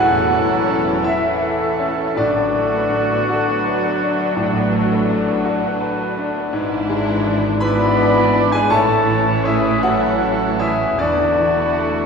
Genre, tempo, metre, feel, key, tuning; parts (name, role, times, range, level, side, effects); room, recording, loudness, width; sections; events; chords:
classical, romantic movement for piano and orchestra; 54 BPM (dotted quarters); 12/8; rubato; A major; A4 = 442 Hz
bright concert grand piano; melody; 0.0-12.1 s; E2 to B5; -19 LUFS; left 1 dB
muted studio violin section; melody; 0.0-12.1 s; D4 to E4; -29 LUFS; left 2 dB
concert flute; second line; 0.0-12.1 s; D5 to B5; -25 LUFS; right 1 dB
muted symphonic violin section; second line; 0.0-12.1 s; A3 to D4; -26 LUFS; left 2 dB
warm oboe; second line; 0.0-12.1 s; F#4 to D5; -24 LUFS; right 3 dB
muted symphonic viola section; accompaniment; 0.0-12.1 s; E3 to F#3; -27 LUFS; right 1 dB
warm French horn section; sustained chords; 0.0-12.1 s; D3 to B3; -25 LUFS; left 3 dB
muted symphonic cello section; bass; 0.0-12.1 s; E2 to A2; -27 LUFS; right 3 dB
muted symphonic double bass section; bass; 0.0-12.1 s; E1 to A1; -27 LUFS; right 3 dB
wet scoring stage reverb, RT60 1.6 s; recorded in a church or concert hall; -15 LUFS; side -5 dB against mid
0.0-12.1 A section
0.0 A; 2.2 Bm7/A; 6.5 E7/G#; 8.7 A; 11.0 A5/E